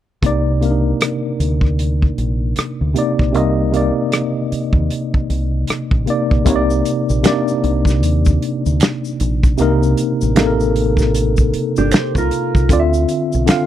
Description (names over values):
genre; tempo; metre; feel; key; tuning
R&B, neo-soul; 77 BPM; 4/4; swing 61% on 16ths; C dorian; A4 = 440 Hz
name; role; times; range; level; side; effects
tine electric piano; accompaniment; 0.2-13.7 s; C3 to F5; -17 LUFS; left 1 dB; overdrive, fast stereo tremolo
deep dub fingered electric bass; bass; 0.2-13.5 s; G1 to Eb2; -18 LUFS; equal; none
warm soul drum kit; drums; 0.2-13.7 s; hi-hat, kick drum, rim click, snare drum; -16 LUFS; equal; none
tube shaker and finger snaps; percussion; 6.5-13.7 s; none; -30 LUFS; right 2 dB; none
mellow electric guitar; second line; 11.8-12.7 s; D4 to C5; -19 LUFS; right 4 dB; wide subtle chorus
room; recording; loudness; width
small room ambience; none; -14 LUFS; side -11 dB against mid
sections
0.2-6.5 A section; 6.5-13.7 B section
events
none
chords
0.2 Cm9; 12.7 Dm9